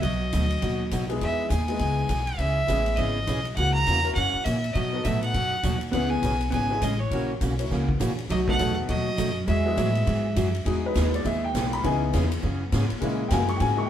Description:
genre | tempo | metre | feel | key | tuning
country, western swing | 203 BPM | 4/4 | swing 61% on 8ths | E major | A4 = 441 Hz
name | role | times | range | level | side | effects
clear fiddle | melody | 0.0-10.5 s | C#5 to A#5 | -28 LUFS | right 1 dB | none
vintage hollow-body jazz guitar | second line | 0.0-1.0, 5.9-10.5 s | E3 to B3 | -30 LUFS | equal | none
picked steel-string acoustic guitar | accompaniment | 0.0-13.8 s | B2 to G#4 | -30 LUFS | right 2 dB | none
upright bass | bass | 0.0-13.9 s | G#1 to B2 | -26 LUFS | equal | none
swinging big-band drum kit | drums | 0.0-13.7 s | hi-hat, kick drum, ride cymbal, snare drum | -34 LUFS | left 1 dB | none
clear upright piano | accompaniment | 1.1-13.9 s | E3 to C#6 | -29 LUFS | left 3 dB | none
room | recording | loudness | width
wet small room reverb, RT60 0.5 s | band playing live in one room | -22 LUFS | side -10 dB against mid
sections
0.0-1.2 A section; 1.2-10.7 B section; 10.7-13.9 C section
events
upright piano solo 10.7-13.9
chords
0.0 B; 1.2 Emaj7; 2.4 C#m7; 3.6 F#7/C#; 4.8 B7; 5.9 C#m7; 7.1 F#7; 8.3 B7; 9.5 Eadd9; 10.7 Emaj7; 11.8 C#m7; 13.0 F#7

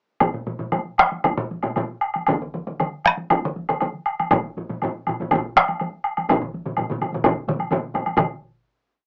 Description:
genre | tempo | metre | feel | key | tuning
japanese traditional, taiko drum ensemble | 115-132 BPM | 4/4 | straight | none | none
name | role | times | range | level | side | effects
solo taiko drums | percussion | 0.2-8.4 s | none | -35 LUFS | equal | none
taiko ensemble | percussion | 0.2-8.6 s | none | -24 LUFS | equal | none
taiko ensemble | percussion | 0.2-8.4 s | none | -26 LUFS | equal | none
woodblock | percussion | 0.2-8.4 s | none | -25 LUFS | equal | none
taiko ensemble | percussion | 2.3-8.6 s | none | -27 LUFS | equal | none
room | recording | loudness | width
wet booth ambience, RT60 0.2 s | home recording on cassette, small speaker sound | -23 LUFS | mono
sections
0.2-8.2 A section; 8.2-9.1 final hit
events
speeding up 0.2-9.1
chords
none

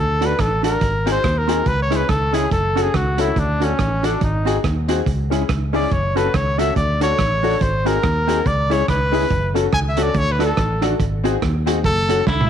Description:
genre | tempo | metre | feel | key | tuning
ska | 141 BPM | 4/4 | swing 59% on 8ths | F# minor | A4 = 440 Hz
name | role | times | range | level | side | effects
warm trumpet | melody | 0.0-12.5 s | C#4 to G#5 | -21 LUFS | equal | none
fingered electric bass | bass | 0.0-12.5 s | F#1 to D#2 | -21 LUFS | equal | none
hollow-body jazz guitar | accompaniment | 0.2-12.2 s | B#3 to A4 | -26 LUFS | right 13 dB | slapback echo
warm upright piano | stabs | 0.2-12.2 s | G#3 to A4 | -24 LUFS | left 12 dB | none
vintage drum kit | drums | 0.2-12.5 s | hi-hat, kick drum, rim click, snare drum, toms | -24 LUFS | right 3 dB | none
clean electric guitar | melody | 12.3-12.5 s | E4 | -23 LUFS | left 1 dB | none
room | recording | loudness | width
light reverb, studio reverb | 1960s-style stereo with parts hard left and right | -16 LUFS | side -9 dB against mid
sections
0.0-12.5 A section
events
trumpet solo 0.0-12.5; drum fill 12.3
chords
0.0 D; 0.8 G#7; 1.7 C#m; 2.5 F#m; 3.4 D; 4.2 G#7; 5.1 C#m; 5.9 F#m; 6.8 D; 7.6 G#7; 8.5 C#m; 9.3 F#m; 10.2 D; 11.0 G#7; 11.8 F#m

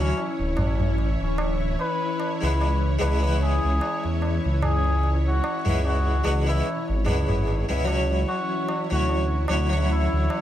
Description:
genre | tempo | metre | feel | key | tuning
trip hop | 74 BPM | 4/4 | swing 55% on 16ths | C# phrygian | A4 = 440 Hz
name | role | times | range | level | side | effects
trumpet with cup mute | melody | 0.0-10.4 s | C#4 to B4 | -30 LUFS | left 2 dB | vintage 12-bit sampler grit, tape echo
harpsichord | accompaniment | 0.0-10.4 s | F#3 to C#5 | -29 LUFS | left 1 dB | tremolo, tape echo
string machine, cellos | sustained chords | 0.0-10.4 s | E4 to C#5 | -29 LUFS | left 1 dB | ensemble chorus
dark detuned saw bass | bass | 0.0-10.3 s | D1 to E2 | -23 LUFS | equal | none
tabla | percussion | 0.2-10.4 s | none | -32 LUFS | right 2 dB | none
room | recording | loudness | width
light reverb, small room ambience | none | -21 LUFS | side -12 dB against mid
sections
0.0-10.4 A section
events
none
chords
0.0 Dmaj9; 1.8 C#m7; 8.3 Dmaj9

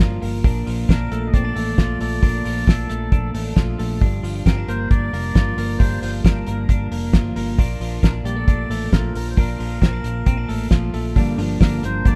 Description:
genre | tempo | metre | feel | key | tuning
jangly indie pop | 134 BPM | 4/4 | straight | Bb major | A4 = 440 Hz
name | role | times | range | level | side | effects
twelve-string electric guitar | arpeggios | 0.0-12.2 s | G2 to D4 | -28 LUFS | equal | spring reverb
vintage muted fingered electric bass | bass | 0.0-12.2 s | F1 to Bb1 | -27 LUFS | equal | none
cloth-damped thuddy drum kit | drums | 0.0-12.2 s | hi-hat, kick drum, snare drum | -19 LUFS | equal | none
melodica | melody | 0.9-12.2 s | A4 to Eb5 | -32 LUFS | equal | none
fingerpicked steel-string acoustic guitar | accompaniment | 11.1-12.2 s | G2 to D4 | -25 LUFS | equal | none
room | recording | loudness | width
small room ambience | rough home demo mix | -20 LUFS | mono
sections
0.0-12.2 A section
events
none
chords
0.4 Bbmaj7; 4.0 Gm7; 7.6 Bbmaj7; 11.2 Gm7

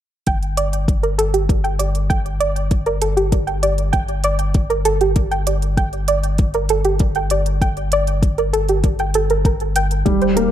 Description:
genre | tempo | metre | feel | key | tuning
piano and strings electronica | 98 BPM | 4/4 | straight | G minor | A4 = 439 Hz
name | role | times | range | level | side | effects
soft round pluck | arpeggios | 0.3-10.5 s | G4 to G5 | -20 LUFS | right 2 dB | chorus, sidechain pumping, digital delay
round analog bass | bass | 0.3-10.5 s | Eb1 to G1 | -21 LUFS | left 1 dB | sidechain pumping
electronic hi-hat | drums | 0.3-10.5 s | none | -29 LUFS | right 5 dB | overdrive
electronic kick drum | drums | 0.3-10.2 s | none | -18 LUFS | left 1 dB | none
felt-muted upright piano | riff | 10.1-10.5 s | G3 to Bb3 | -14 LUFS | equal | none
room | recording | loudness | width
light reverb | none | -16 LUFS | side -11 dB against mid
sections
0.3-10.5 A section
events
none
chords
0.3 Gmadd9

